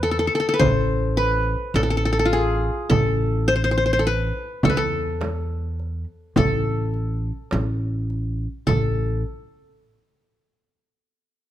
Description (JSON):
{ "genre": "Arabic maqam ensemble", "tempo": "104 BPM (eighths)", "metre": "10/8", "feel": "straight", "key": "A maqam nahawand", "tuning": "A4 = 440 Hz", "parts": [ { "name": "qanun", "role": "melody", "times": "0.0-9.2 s", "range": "F4 to C5", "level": "-22 LUFS", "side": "left 2 dB", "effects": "none" }, { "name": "upright bass", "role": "bass", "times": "0.0-9.2 s", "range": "A1 to E2", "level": "-24 LUFS", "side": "equal", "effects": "none" }, { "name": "darbuka", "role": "percussion", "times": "0.0-9.2 s", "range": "none", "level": "-26 LUFS", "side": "right 6 dB", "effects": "none" }, { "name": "frame drum", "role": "percussion", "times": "0.6-9.2 s", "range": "none", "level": "-26 LUFS", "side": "left 1 dB", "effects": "none" } ], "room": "little or no reverb", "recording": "close, detailed microphones", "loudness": "-20 LUFS", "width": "side -12 dB against mid", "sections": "0.0-8.7 A section; 8.7-11.5 B section", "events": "none", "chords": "none", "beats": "0.03 0.61 1.18 1.76 2.33 | 2.91 3.49 4.06 4.64 5.21 5.79 6.37 6.94 7.52 8.10 | 8.67" }